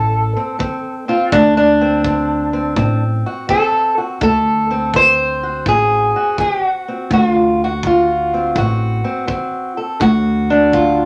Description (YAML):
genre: acoustic country blues, solo or duo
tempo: 83 BPM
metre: 4/4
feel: swing 67% on 8ths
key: D mixolydian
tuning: A4 = 439 Hz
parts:
  - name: fingerpicked steel-string acoustic guitar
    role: melody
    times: 0.0-11.1 s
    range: A2 to C5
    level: -17 LUFS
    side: equal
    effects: none
  - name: upright bass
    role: bass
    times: 0.0-11.1 s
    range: A1 to D2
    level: -20 LUFS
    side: equal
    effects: none
  - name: kick drum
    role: drums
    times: 0.6-11.0 s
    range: none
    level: -28 LUFS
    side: equal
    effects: none
room: moderate studio reverb, RT60 0.7 s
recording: none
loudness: -16 LUFS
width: mono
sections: 0.0-4.2 A section; 4.2-11.1 B section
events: steel-string acoustic guitar solo 0.0-4.2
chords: 0.0 D7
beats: 0.60 | 1.33 2.05 2.77 3.49 | 4.21 4.93 5.66 6.38 | 7.11 7.83 8.55 9.28 | 10.01 10.73